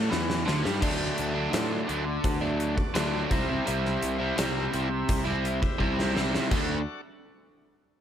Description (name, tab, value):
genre	classic rock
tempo	84 BPM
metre	4/4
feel	straight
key	D mixolydian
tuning	A4 = 443 Hz
part	bright tonewheel organ	sustained chords	0.0-7.0 s	A3 to F#5	-38 LUFS	equal	slow rotary speaker, overdrive
part	overdriven electric guitar	riff	0.0-6.8 s	C3 to E4	-28 LUFS	equal	none
part	picked electric bass	bass	0.0-6.8 s	C2 to A2	-32 LUFS	equal	none
part	gated 80s drum kit	drums	0.1-6.7 s	crash cymbal, hi-hat, kick drum, snare drum	-29 LUFS	equal	none
room	light reverb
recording	none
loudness	-25 LUFS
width	side -9 dB against mid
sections	0.8-6.5 A section; 6.5-8.0 B section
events	drum fill 0.0-0.8, 5.8-6.5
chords	0.0 D; 3.3 C; 6.5 D